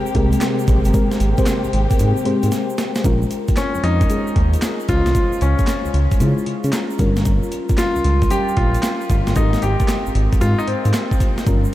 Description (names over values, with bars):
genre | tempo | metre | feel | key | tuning
R&B, new jack swing | 114 BPM | 4/4 | swing 66% on 16ths | unclear | A4 = 440 Hz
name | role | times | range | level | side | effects
mellow FM electric piano | accompaniment | 0.0-11.7 s | G3 to Bb5 | -23 LUFS | left 2 dB | chorus
warm studio string section | sustained chords | 0.0-3.0 s | C3 to G4 | -25 LUFS | equal | none
breakbeat sampler-style drum kit | drums | 0.1-11.6 s | handclaps, hi-hat, kick drum, snare drum | -20 LUFS | equal | overdrive
egg shaker | percussion | 0.1-11.7 s | none | -39 LUFS | right 6 dB | none
smooth gliding synth bass | bass | 0.2-11.7 s | G1 to Db3 | -18 LUFS | equal | none
bright concert grand piano | melody | 3.6-11.2 s | C4 to G4 | -23 LUFS | left 1 dB | diffuse ambient delay
room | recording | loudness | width
light reverb, digital ambience | none | -15 LUFS | side -14 dB against mid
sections
0.0-3.0 A section; 3.0-11.7 B section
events
drum fill 2.5-3.0; FM electric piano fill 6.5-7.3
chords
0.0 Abmaj9; 3.0 Bbm7; 4.9 Dbmaj7; 7.0 Gm7b5; 9.4 Abmaj9